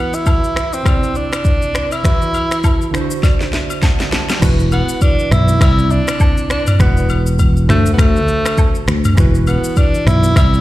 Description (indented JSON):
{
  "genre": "afrobeats",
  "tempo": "101 BPM",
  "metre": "4/4",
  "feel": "swing 58% on 16ths",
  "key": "unclear",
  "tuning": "A4 = 440 Hz",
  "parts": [
    { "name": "breathy tenor saxophone", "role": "melody", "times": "0.0-10.6 s", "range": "A3 to E4", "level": "-19 LUFS", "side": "equal", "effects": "ping-pong delay" },
    { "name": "warm analog keys", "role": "accompaniment", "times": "0.0-10.6 s", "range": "C3 to A5", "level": "-22 LUFS", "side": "right 3 dB", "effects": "chorus" },
    { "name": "afro-pop drum kit", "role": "drums", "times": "0.1-10.6 s", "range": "crash cymbal, finger snaps, kick drum, rim click, shaker, snare drum, toms", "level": "-14 LUFS", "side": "equal", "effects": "none" },
    { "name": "agogo bells and woodblock", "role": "percussion", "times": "0.3-10.5 s", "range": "none", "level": "-28 LUFS", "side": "left 4 dB", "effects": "none" },
    { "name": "fingered electric bass", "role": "bass", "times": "4.4-10.6 s", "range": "E1 to D2", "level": "-14 LUFS", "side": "equal", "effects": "none" }
  ],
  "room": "digital ambience",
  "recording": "played on a big sound system in a bare room, large studio reverb",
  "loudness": "-12 LUFS",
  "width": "side -16 dB against mid",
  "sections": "0.0-4.4 A section; 4.4-10.6 B section",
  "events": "synth keys fill 2.6-4.4; drum fill 3.2-4.4",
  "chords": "0.0 Esus2; 0.9 Cadd9; 2.0 Esus2; 2.9 D7; 4.4 Esus2; 5.6 Cadd9; 6.8 Esus2; 7.7 D7; 9.2 Esus2"
}